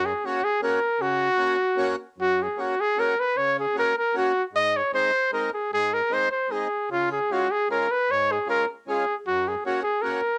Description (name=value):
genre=alpine folk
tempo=153 BPM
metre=3/4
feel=straight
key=F# major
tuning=A4 = 441 Hz
part: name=warm trumpet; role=melody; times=0.0-10.4 s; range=E#4 to D#5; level=-25 LUFS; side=equal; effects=cassette tape
part: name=accordion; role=accompaniment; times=0.0-10.2 s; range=F#2 to F#4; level=-34 LUFS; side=equal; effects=cassette tape
room=moderate studio reverb, RT60 0.5 s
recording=home recording on cassette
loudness=-24 LUFS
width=mono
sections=0.0-2.2 A section; 2.2-10.4 A section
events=none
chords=0.0 F#; 4.5 G#; 6.9 C#; 9.3 F#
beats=0.22 0.61 | 1.00 1.39 1.78 | 2.18 2.57 2.96 | 3.36 3.75 4.14 | 4.53 4.92 5.31 | 5.70 6.10 6.49 | 6.89 7.29 7.68 | 8.08 8.47 8.87 | 9.25 9.64 10.03